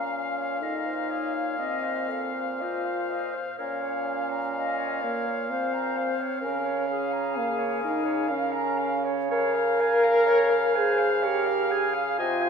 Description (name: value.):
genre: classical, slow romantic movement for wind quintet.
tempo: 63 BPM.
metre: 3/4.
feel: rubato.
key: Bb minor.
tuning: A4 = 440 Hz.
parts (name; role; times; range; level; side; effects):
silver concert flute; melody; 0.0-12.5 s; Ab4 to F5; -32 LUFS; left 9 dB; none.
clear oboe; second line; 0.0-12.5 s; F5 to Ab5; -32 LUFS; left 2 dB; none.
mellow French horn; accompaniment; 0.0-12.5 s; Bb3 to Bb4; -27 LUFS; equal; none.
warm clarinet; accompaniment; 0.0-12.5 s; A4 to Bb5; -32 LUFS; right 7 dB; none.
clear bassoon; bass; 0.0-12.5 s; Bb2 to Db3; -33 LUFS; right 4 dB; none.
room: wet scoring stage reverb, RT60 1.7 s.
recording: none.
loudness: -24 LUFS.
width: side -6 dB against mid.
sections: 0.0-12.5 A section.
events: none.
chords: 0.0 Bbm; 0.6 F7/Bb; 3.6 Bbm; 6.4 Bbm/Db; 9.3 Db.